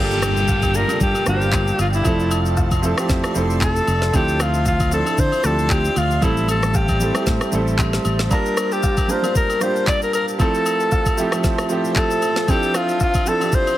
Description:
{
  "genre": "amapiano",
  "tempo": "115 BPM",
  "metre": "4/4",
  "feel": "swing 55% on 16ths",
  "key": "G dorian",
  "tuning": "A4 = 440 Hz",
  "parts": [
    { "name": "breathy alto saxophone", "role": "melody", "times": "0.0-13.8 s", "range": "E4 to D5", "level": "-22 LUFS", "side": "left 1 dB", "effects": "digital delay" },
    { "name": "warm baby grand piano", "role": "accompaniment", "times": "0.0-13.8 s", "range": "F3 to A5", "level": "-23 LUFS", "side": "right 2 dB", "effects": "none" },
    { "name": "granular cloud pad", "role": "sustained chords", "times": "0.1-13.8 s", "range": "F3 to C6", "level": "-30 LUFS", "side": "equal", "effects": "built-in reverb, sidechain pumping" },
    { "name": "fingered electric bass", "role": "bass", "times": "0.0-8.3 s", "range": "F1 to D3", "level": "-21 LUFS", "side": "equal", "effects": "none" },
    { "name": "downlifter", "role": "sound effects", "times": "0.0-4.1 s", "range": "none", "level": "-30 LUFS", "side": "left 1 dB", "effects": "none" },
    { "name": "smooth R&B drum kit", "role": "drums", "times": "0.1-13.8 s", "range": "handclaps, kick drum, rim click, shaker, snare drum", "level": "-22 LUFS", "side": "equal", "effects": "none" },
    { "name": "agogo bells and woodblock", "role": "percussion", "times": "0.2-13.8 s", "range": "none", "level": "-30 LUFS", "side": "left 4 dB", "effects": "none" }
  ],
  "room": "little or no reverb",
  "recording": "heavily compressed radio sound",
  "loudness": "-16 LUFS",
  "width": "side -14 dB against mid",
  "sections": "0.0-13.8 A section",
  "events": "none",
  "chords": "0.0 Gm9; 2.0 Fmaj7; 4.1 Dm9; 6.2 Am7; 8.3 Gm9; 10.4 Fmaj7; 12.5 Dm9"
}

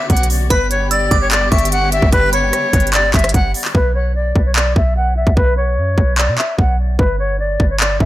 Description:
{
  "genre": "hip hop, trap",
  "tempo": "148 BPM",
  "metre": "4/4",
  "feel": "half-time",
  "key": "B minor",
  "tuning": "A4 = 440 Hz",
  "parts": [
    { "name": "bright reedy jazz flute", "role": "melody", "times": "0.0-8.1 s", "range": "B4 to F#5", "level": "-18 LUFS", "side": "left 1 dB", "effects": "low-pass filter, ping-pong delay" },
    { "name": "glassy synth bell", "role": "second line", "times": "0.0-3.7 s", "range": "B5 to E6", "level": "-24 LUFS", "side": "right 2 dB", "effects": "chorus, phaser, ping-pong delay" },
    { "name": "warm symphonic string section", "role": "sustained chords", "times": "0.0-3.7 s", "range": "C#3 to G4", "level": "-24 LUFS", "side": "left 2 dB", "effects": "none" },
    { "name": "warm 808-style bass", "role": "bass", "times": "0.1-8.1 s", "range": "G1 to B2", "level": "-17 LUFS", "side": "equal", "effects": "none" },
    { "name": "trap drum kit", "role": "drums", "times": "0.1-8.1 s", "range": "handclaps, hi-hat, kick drum, rim click", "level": "-15 LUFS", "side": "equal", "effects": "none" }
  ],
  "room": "little or no reverb",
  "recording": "none",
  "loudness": "-12 LUFS",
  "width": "side -15 dB against mid",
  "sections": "0.0-3.7 A section; 3.7-8.1 B section",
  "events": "hi-hats muted 3.7-8.1",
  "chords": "0.0 Bmadd9; 0.5 G; 3.7 Bsus2; 7.0 G5"
}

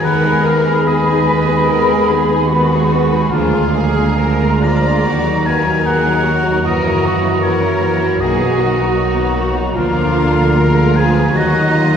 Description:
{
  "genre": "classical, slow romantic movement for symphony orchestra",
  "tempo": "64-79 BPM",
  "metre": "4/4",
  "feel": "rubato",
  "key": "Eb minor",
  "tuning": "A4 = 442 Hz",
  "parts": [
    { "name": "rich studio violin section", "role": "melody", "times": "0.0-12.0 s", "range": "D4 to Cb5", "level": "-25 LUFS", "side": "left 4 dB", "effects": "none" },
    { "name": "clear oboe", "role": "second line", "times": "0.0-12.0 s", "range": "Db5 to Bb5", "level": "-21 LUFS", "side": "right 1 dB", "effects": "none" },
    { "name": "dark clarinet", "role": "second line", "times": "0.0-12.0 s", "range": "Eb4 to Ab4", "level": "-24 LUFS", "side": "right 1 dB", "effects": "none" },
    { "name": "flute section", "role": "second line", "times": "0.0-12.0 s", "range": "Bb5 to Gb6", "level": "-22 LUFS", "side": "left 1 dB", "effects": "none" },
    { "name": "rich studio violin section", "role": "second line", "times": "0.0-12.0 s", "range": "Fb4 to Eb5", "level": "-26 LUFS", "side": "left 2 dB", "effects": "none" },
    { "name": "warm studio viola section", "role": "accompaniment", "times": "0.0-12.0 s", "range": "D3 to Eb4", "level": "-21 LUFS", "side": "equal", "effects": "none" },
    { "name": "dark French horn section", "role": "sustained chords", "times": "0.0-12.0 s", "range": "Fb3 to Cb4", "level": "-21 LUFS", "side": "left 2 dB", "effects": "none" },
    { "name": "concert harp", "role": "arpeggios", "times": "0.0-12.0 s", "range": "Gb2 to Eb5", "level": "-22 LUFS", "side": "left 1 dB", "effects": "none" },
    { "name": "rich studio double bass section", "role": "bass", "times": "0.0-12.0 s", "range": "B1 to Gb2", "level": "-18 LUFS", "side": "right 2 dB", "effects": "none" },
    { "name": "warm studio cello section", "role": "bass", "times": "0.0-12.0 s", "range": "F4 to Cb5", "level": "-22 LUFS", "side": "right 1 dB", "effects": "none" }
  ],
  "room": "wet scoring stage reverb, RT60 1.6 s",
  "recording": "heard from further back in the room",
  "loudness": "-12 LUFS",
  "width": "side -7 dB against mid",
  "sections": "0.0-12.0 A section",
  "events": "none",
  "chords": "0.0 Abm/Eb; 3.3 Bb7/D; 5.0 Ebm; 6.6 Gb7; 8.2 Bmaj7; 9.8 Bb/D; 11.3 Ebm"
}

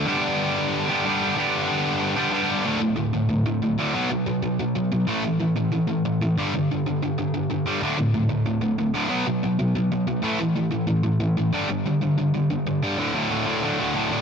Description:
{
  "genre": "punk",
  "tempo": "186 BPM",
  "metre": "4/4",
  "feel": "straight",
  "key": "D major",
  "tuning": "A4 = 440 Hz",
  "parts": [
    { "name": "sludgy distorted guitar", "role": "solo", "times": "0.0-14.2 s", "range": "D2 to G4", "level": "-21 LUFS", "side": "equal", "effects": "overdrive, ping-pong delay" }
  ],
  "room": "moderate studio reverb, RT60 0.5 s",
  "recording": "none",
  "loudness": "-21 LUFS",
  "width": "side -6 dB against mid",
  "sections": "0.0-2.7 A section; 2.7-13.0 B section; 13.0-14.2 C section",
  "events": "none",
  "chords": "0.1 G; 2.7 D5; 3.9 B5; 5.1 A5; 6.4 G5; 7.8 D5; 9.1 B5; 10.2 A5; 11.5 G5; 13.0 D5"
}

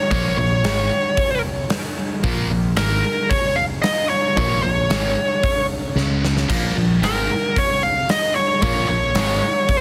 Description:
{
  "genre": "hard rock",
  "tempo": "113 BPM",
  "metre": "4/4",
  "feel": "straight",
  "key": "Bb minor",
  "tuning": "A4 = 440 Hz",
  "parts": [
    { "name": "biting lead guitar", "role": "melody", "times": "0.0-9.8 s", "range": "Bb4 to F5", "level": "-22 LUFS", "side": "equal", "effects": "overdrive, analog delay" },
    { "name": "sludgy distorted guitar", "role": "riff", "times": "0.1-9.4 s", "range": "Ab2 to Db4", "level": "-26 LUFS", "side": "equal", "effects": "overdrive" },
    { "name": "fingered electric bass", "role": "bass", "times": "0.1-9.4 s", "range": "Ab1 to Db2", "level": "-25 LUFS", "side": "equal", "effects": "none" },
    { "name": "huge arena drum kit", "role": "drums", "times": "0.1-9.8 s", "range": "crash cymbal, hi-hat, kick drum, snare drum", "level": "-25 LUFS", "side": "equal", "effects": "none" },
    { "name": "heavy high-gain guitar", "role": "riff", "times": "6.5-9.4 s", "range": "Ab2 to Bb3", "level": "-28 LUFS", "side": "equal", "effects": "distortion" }
  ],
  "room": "light reverb, small room reverb",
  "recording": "heavily compressed radio sound, multiband compression",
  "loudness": "-19 LUFS",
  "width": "mono",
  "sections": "0.0-9.8 A section",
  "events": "drum fill 6.0-6.5",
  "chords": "0.0 Bbm; 6.0 Db5; 6.5 Bbm"
}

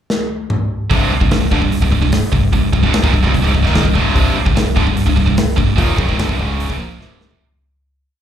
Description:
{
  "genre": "heavy metal",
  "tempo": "148 BPM",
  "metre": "4/4",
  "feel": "straight",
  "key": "C phrygian",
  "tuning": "A4 = 439 Hz",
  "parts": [
    { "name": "big rock drum kit", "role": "drums", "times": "0.1-7.4 s", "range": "hi-hat, kick drum, snare drum, toms", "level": "-16 LUFS", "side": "equal", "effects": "none" },
    { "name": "distorted electric guitar", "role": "riff", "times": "0.9-7.4 s", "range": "C2 to Bb3", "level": "-23 LUFS", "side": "left 10 dB", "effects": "overdrive" },
    { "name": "heavy high-gain guitar", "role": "riff", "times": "0.9-7.4 s", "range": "C2 to Bb3", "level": "-19 LUFS", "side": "right 7 dB", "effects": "distortion" },
    { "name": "overdriven semi-hollow guitar", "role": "riff", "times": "0.9-7.4 s", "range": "C2 to Bb3", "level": "-22 LUFS", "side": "equal", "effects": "none" },
    { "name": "growling fingered electric bass", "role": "bass", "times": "0.9-7.4 s", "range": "C1 to Bb1", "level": "-20 LUFS", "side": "equal", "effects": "overdrive" }
  ],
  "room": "little or no reverb",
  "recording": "live gig heard through the venue's PA, club reverb",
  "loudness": "-12 LUFS",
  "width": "side -10 dB against mid",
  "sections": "0.0-0.9 pickup bar; 0.9-7.4 riff",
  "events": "drum fill 0.1-0.9, 7.0-7.4; fade-out 5.8-7.4",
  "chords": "0.0 N.C.; 0.9 Cm"
}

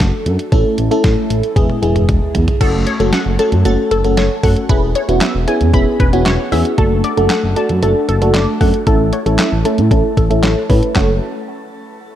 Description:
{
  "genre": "synth-pop",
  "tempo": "115 BPM",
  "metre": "4/4",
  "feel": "straight",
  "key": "F# minor",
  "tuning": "A4 = 440 Hz",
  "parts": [
    { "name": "FM electric piano with soft pad layer", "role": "accompaniment", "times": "0.0-11.2 s", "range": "G#3 to B5", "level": "-16 LUFS", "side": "equal", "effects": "chorus, phaser, low-pass filter, shimmer reverb" },
    { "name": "smooth gliding synth bass", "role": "bass", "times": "0.0-11.2 s", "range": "E1 to A2", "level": "-16 LUFS", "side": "equal", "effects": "none" },
    { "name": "detuned 8-bit digital drum machine", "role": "drums", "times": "0.0-11.1 s", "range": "crash cymbal, handclaps, hi-hat, kick drum, snare drum, toms", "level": "-17 LUFS", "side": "equal", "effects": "overdrive" },
    { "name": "resonant blip pluck", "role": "arpeggios", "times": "2.6-11.2 s", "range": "A4 to A6", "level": "-24 LUFS", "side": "left 1 dB", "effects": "phaser, low-pass filter, tape echo, shimmer reverb" }
  ],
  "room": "light reverb",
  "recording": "none",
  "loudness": "-12 LUFS",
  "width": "side -11 dB against mid",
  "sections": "0.0-2.6 A section; 2.6-11.0 B section; 11.0-12.2 C section",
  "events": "drum fill 1.6-2.6; filter sweep 2.6-11.0; FM electric piano fill 5.7-6.8",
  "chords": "0.0 D/F#; 0.5 A; 1.6 E; 2.6 F#m; 4.7 C#m7/E; 6.8 D/F#; 8.9 A; 11.0 F#m"
}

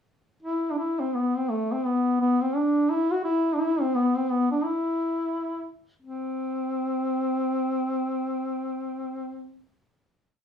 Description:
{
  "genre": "celtic folk",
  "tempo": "free time",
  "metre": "none",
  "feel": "none",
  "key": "unclear",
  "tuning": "A4 = 440 Hz",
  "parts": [
    { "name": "mellow duduk", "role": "solo", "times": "0.4-9.6 s", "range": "A3 to F#4", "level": "-24 LUFS", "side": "left 1 dB", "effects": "none" }
  ],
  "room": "wet studio reverb, RT60 0.6 s",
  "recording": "small room ambience",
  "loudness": "-24 LUFS",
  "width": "side -7 dB against mid",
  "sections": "0.4-6.0 A section; 6.0-8.8 final note",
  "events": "none",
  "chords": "none"
}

